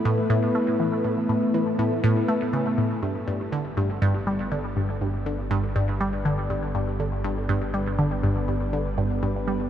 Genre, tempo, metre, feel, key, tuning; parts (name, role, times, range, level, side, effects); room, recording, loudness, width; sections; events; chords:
ambient, sequencer-driven space music; 121 BPM; 4/4; straight; G major; A4 = 440 Hz
evolving wavetable pad; sustained chords; 0.0-9.7 s; G3 to B4; -27 LUFS; left 1 dB; chorus, built-in reverb, shimmer reverb
resonant blip pluck; riff; 0.1-9.6 s; G2 to A3; -24 LUFS; equal; phaser, tape echo, shimmer reverb
fat analog bass; bass; 3.0-9.7 s; G1; -32 LUFS; equal
wet huge ambient reverb, RT60 7.1 s; dark, warm production; -22 LUFS; side -10 dB against mid
0.0-3.0 A section; 3.0-9.7 B section
fade-in on ambient pad 3.0-9.7
0.0 Asus2; 3.0 G